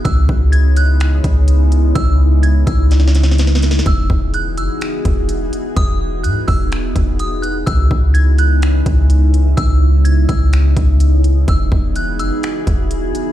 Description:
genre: hip hop, atmospheric cloud-rap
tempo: 126 BPM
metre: 4/4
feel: half-time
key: unclear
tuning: A4 = 439 Hz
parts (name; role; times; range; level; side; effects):
- delicate synth tine bell; melody; 0.0-13.3 s; D#6 to G#6; -25 LUFS; right 2 dB; chorus, phaser, low-pass filter, ping-pong delay
- clean 808-style bass; bass; 0.0-13.1 s; E1 to G#2; -12 LUFS; equal; none
- glassy FM pad; sustained chords; 0.1-13.3 s; C#3 to G#4; -21 LUFS; left 1 dB; ensemble chorus, built-in reverb, sidechain pumping
- trap drum kit; drums; 0.1-13.3 s; finger snaps, hi-hat, kick drum, snare drum; -18 LUFS; equal; none
room: little or no reverb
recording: played on a big sound system in a bare room, stone room reverb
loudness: -12 LUFS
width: side -13 dB against mid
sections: 0.0-13.3 A section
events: drum fill 2.9-3.9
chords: 0.1 C#m7; 3.9 Emaj7; 7.7 C#m7; 11.5 Emaj7

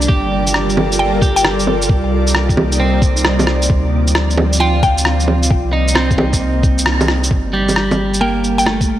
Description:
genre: future garage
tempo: 133 BPM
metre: 4/4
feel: swing 66% on 16ths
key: C dorian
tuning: A4 = 439 Hz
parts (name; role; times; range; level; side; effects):
- twelve-string electric guitar; accompaniment; 0.0-9.0 s; G3 to G4; -20 LUFS; right 2 dB; sidechain pumping, analog delay
- ethereal airy pad; sustained chords; 0.0-7.3 s; C3 to D5; -20 LUFS; equal; ensemble chorus, built-in reverb, sidechain pumping
- soft dub sub bass; bass; 0.0-9.0 s; G1 to D2; -18 LUFS; equal; sidechain pumping
- electronic shaker, rim click and bongos; drums; 0.0-8.9 s; none; -17 LUFS; right 1 dB; none
- electronic kick drum; drums; 0.1-8.9 s; none; -15 LUFS; equal; none
- mallet-like synth pluck; melody; 1.0-1.8, 4.6-5.2, 8.2-9.0 s; G5; -20 LUFS; left 1 dB; chorus, analog delay
room: moderate lush hall reverb, RT60 1.8 s, digital ambience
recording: vinyl crackle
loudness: -12 LUFS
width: side -12 dB against mid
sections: 0.0-7.3 A section; 7.3-9.0 B section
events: band accent 6.9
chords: 0.1 Gm7; 1.9 Cm7; 3.7 Dm7; 5.5 Cm7; 7.3 Gm

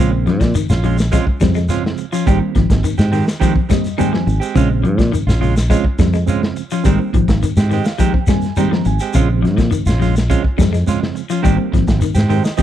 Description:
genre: afrobeat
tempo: 105 BPM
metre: 4/4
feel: straight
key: Bb dorian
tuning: A4 = 440 Hz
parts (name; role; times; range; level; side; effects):
- barky reed electric piano; accompaniment; 0.0-12.6 s; Db3 to Bb5; -23 LUFS; right 16 dB; medium tremolo
- semi-hollow electric guitar; arpeggios; 0.0-12.6 s; Db3 to Ab3; -20 LUFS; left 9 dB; none
- semi-hollow electric guitar; stabs; 0.0-12.6 s; Eb3 to G4; -22 LUFS; right 8 dB; spring reverb
- fingered electric bass; bass; 0.0-12.4 s; Ab1 to Bb2; -16 LUFS; equal; none
- crunchy breakbeat drum kit; drums; 0.3-12.6 s; hi-hat, kick drum, snare drum; -17 LUFS; equal; none
- shekere; percussion; 0.4-12.6 s; none; -22 LUFS; left 1 dB; none
room: little or no reverb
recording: dry, close 1970s-style studio recording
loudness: -13 LUFS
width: side -11 dB against mid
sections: 0.0-12.6 A section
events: reed electric piano fill 3.4-4.6, 7.4-9.1, 12.0-12.6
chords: 0.0 Bbm7; 2.3 Abmaj7; 4.6 Bbm7; 6.8 Abmaj7; 9.1 Bbm7; 11.4 Abmaj7

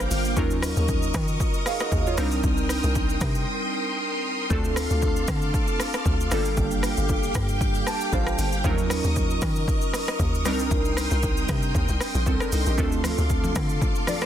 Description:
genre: amapiano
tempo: 116 BPM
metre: 4/4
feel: swing 55% on 16ths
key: unclear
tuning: A4 = 441 Hz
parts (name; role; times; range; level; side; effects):
- glassy digital keys; accompaniment; 0.0-14.3 s; F3 to A5; -28 LUFS; right 2 dB; chorus
- string machine, violins; sustained chords; 0.0-14.3 s; Bb3 to Eb6; -30 LUFS; equal; ensemble chorus, sidechain pumping
- hollow log drum bass; bass; 0.0-13.8 s; G1 to Eb3; -26 LUFS; equal; none
- deep house drum kit; drums; 0.0-14.3 s; hi-hat, kick drum, rim click, shaker; -26 LUFS; equal; overdrive
- congas; percussion; 13.0-14.2 s; none; -33 LUFS; left 3 dB; none
room: digital ambience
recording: dense, heavily limited modern master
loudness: -22 LUFS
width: side -10 dB against mid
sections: 0.0-14.3 A section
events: break 3.5-4.5; synth keys fill 7.6-8.6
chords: 0.4 Ebm7; 2.2 Cm7; 4.5 Dm7; 6.3 Gm7; 8.6 Ebm7; 10.5 Cm7; 12.8 Dm7

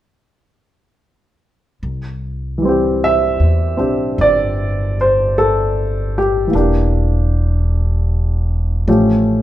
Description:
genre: jazz ballad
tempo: 51 BPM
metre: 4/4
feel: swing 68% on 8ths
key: C major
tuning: A4 = 440 Hz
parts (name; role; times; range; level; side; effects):
- upright bass; bass; 1.8-9.4 s; E1 to E2; -17 LUFS; equal; none
- warm grand piano; accompaniment; 2.6-9.4 s; E3 to E5; -15 LUFS; equal; none
room: light reverb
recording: minimal, uncompressed stereo recording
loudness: -13 LUFS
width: side -13 dB against mid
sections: 1.8-9.4 A section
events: none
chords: 1.8 C; 6.5 Em7b5; 8.9 A7b13

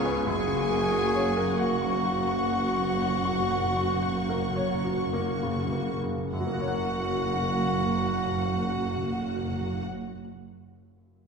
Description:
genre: classical, romantic movement for piano and orchestra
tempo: 32-47 BPM (dotted quarters)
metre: 12/8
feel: rubato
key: F# major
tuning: A4 = 440 Hz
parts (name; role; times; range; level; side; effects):
- clear baby grand piano; melody; 0.0-11.3 s; C#2 to C#6; -32 LUFS; left 1 dB; none
- rich studio violin section; melody; 0.0-9.8 s; F#5 to C#6; -37 LUFS; left 2 dB; none
- clear clarinet; second line; 0.0-9.8 s; F#4 to G#4; -32 LUFS; equal; none
- warm studio violin section; second line; 0.0-9.8 s; F#5 to G#5; -36 LUFS; left 2 dB; none
- rich studio viola section; accompaniment; 0.0-9.8 s; A#3 to F#4; -34 LUFS; right 1 dB; none
- mellow French horn section; sustained chords; 0.0-9.8 s; A#3 to F#4; -35 LUFS; left 3 dB; none
- mellow tuba; bass; 0.0-9.8 s; F#1 to C#2; -38 LUFS; right 4 dB; none
- rich chamber double bass section; bass; 0.0-9.8 s; F#1 to C#2; -36 LUFS; right 3 dB; none
- rich symphonic cello section; bass; 0.0-9.8 s; C#2 to F#2; -34 LUFS; right 4 dB; none
- timpani; percussion; 0.3-9.8 s; F#2; -37 LUFS; left 1 dB; none
room: wet scoring stage reverb, RT60 1.7 s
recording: recorded in a church or concert hall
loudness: -25 LUFS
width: side -5 dB against mid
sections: 0.0-6.3 A section; 6.3-11.3 B section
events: slowing down 0.0-6.3; timpani fill 0.3-6.3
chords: 0.3 F#

